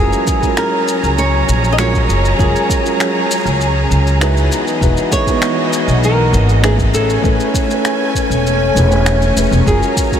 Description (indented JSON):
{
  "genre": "sunset chillout",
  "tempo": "99 BPM",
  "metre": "4/4",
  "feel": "straight",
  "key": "F# major",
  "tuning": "A4 = 439 Hz",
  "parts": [
    { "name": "flamenco guitar", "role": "melody", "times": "0.0-10.2 s", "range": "G#4 to D#5", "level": "-20 LUFS", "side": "equal", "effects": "diffuse ambient delay" },
    { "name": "dark grand piano", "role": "accompaniment", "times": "0.0-10.2 s", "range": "G#3 to G#5", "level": "-19 LUFS", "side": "moving between left 4 dB and right 5 dB", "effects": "auto-pan, diffuse ambient delay" },
    { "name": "rich symphonic string section", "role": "sustained chords", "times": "0.0-10.2 s", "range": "E3 to A#5", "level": "-18 LUFS", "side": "equal", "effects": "none" },
    { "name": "Celtic harp", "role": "arpeggios", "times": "0.0-2.3 s", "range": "E4 to G#4", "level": "-31 LUFS", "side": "right 2 dB", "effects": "none" },
    { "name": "upright bass", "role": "bass", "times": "0.0-9.8 s", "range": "E1 to C#2", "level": "-14 LUFS", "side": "equal", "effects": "none" },
    { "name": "electronic shaker and finger snaps", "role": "drums", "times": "0.1-10.2 s", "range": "none", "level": "-23 LUFS", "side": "left 1 dB", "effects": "none" },
    { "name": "electronic kick drum", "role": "drums", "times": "0.3-10.2 s", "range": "none", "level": "-17 LUFS", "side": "equal", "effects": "none" }
  ],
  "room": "moderate huge ambient reverb, RT60 7.2 s",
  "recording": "dreamy mix soaked in reverb",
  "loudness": "-12 LUFS",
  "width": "side -9 dB against mid",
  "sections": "0.0-10.2 A section",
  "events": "none",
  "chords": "0.0 F#maj9; 4.5 Emaj9; 6.9 Amaj9; 9.7 F#maj9"
}